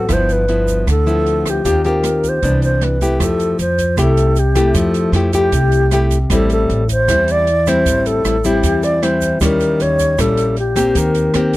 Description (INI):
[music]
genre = bossa nova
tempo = 155 BPM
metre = 4/4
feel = straight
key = C major, F major from 3.2 s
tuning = A4 = 440 Hz
[part]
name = alto flute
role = melody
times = 0.0-11.6 s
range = G4 to D5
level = -17 LUFS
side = left 1 dB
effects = none
[part]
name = nylon-string guitar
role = accompaniment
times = 0.0-11.6 s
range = G2 to G4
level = -17 LUFS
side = left 1 dB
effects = none
[part]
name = upright bass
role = bass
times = 0.0-11.6 s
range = G1 to F2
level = -19 LUFS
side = right 1 dB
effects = none
[part]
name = open jazz drum kit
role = drums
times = 0.1-11.6 s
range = hi-hat, kick drum, rim click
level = -23 LUFS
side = right 2 dB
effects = none
[part]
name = tube shaker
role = percussion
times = 0.1-11.6 s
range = none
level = -32 LUFS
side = right 26 dB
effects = none
[sound]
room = little or no reverb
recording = dry, close 1970s-style studio recording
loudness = -13 LUFS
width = side -17 dB against mid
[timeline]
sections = 0.0-3.2 A section; 3.2-11.6 B section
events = none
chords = 0.1 G13; 1.6 Eb69; 2.4 Cmaj9; 3.2 Fmaj9; 6.3 Am7; 9.4 Eb7b9; 11.0 Eb6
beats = | 0.09 0.48 0.87 1.26 | 1.65 2.03 2.42 2.81 | 3.20 3.59 3.98 4.36 | 4.75 5.14 5.53 5.92 | 6.30 6.69 7.08 7.47 | 7.86 8.24 8.63 9.02 | 9.41 9.80 10.18 10.57 | 10.96 11.35